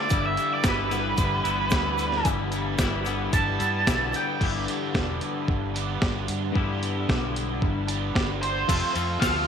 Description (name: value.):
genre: indie rock.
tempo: 112 BPM.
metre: 4/4.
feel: straight.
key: unclear.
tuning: A4 = 439 Hz.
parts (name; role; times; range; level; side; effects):
octave-fuzz lead guitar; melody; 0.0-4.4, 8.4-9.5 s; B4 to A5; -27 LUFS; right 3 dB; distortion, tape echo.
overdriven electric guitar; riff; 0.0-9.5 s; F2 to G4; -32 LUFS; right 13 dB; ensemble chorus.
twangy electric guitar; riff; 0.0-9.5 s; G2 to A4; -30 LUFS; left 13 dB; analog chorus.
vintage muted fingered electric bass; bass; 0.1-9.5 s; E1 to G2; -30 LUFS; equal; none.
boom bap sampler-style drum kit; drums; 0.1-9.3 s; crash cymbal, hi-hat, kick drum, ride cymbal, snare drum; -27 LUFS; equal; none.
tube shaker; percussion; 0.1-4.3, 8.7-9.3 s; none; -43 LUFS; right 17 dB; none.
room: digital ambience.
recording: 1960s-style stereo with parts hard left and right.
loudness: -23 LUFS.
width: side -7 dB against mid.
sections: 0.0-4.4 A section; 4.4-8.7 B section.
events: lead electric guitar solo 0.0-4.4.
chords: 0.1 G6; 8.7 F.